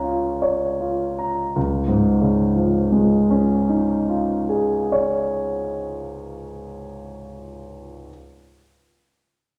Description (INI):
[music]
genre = classical, impressionist solo piano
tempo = 40 BPM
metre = 3/4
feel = rubato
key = Db major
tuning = A4 = 440 Hz
[part]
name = warm concert grand piano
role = solo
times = 0.0-8.1 s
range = Db2 to Bb5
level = -22 LUFS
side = equal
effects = none
[sound]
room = wet recital hall reverb, RT60 1.6 s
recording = none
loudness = -20 LUFS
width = mono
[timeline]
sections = 0.0-1.5 A section; 1.5-6.0 B section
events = slowing down 0.0-1.5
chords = 0.0 Db6; 1.5 Dbadd9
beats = 0.02 | 1.54 3.04 4.56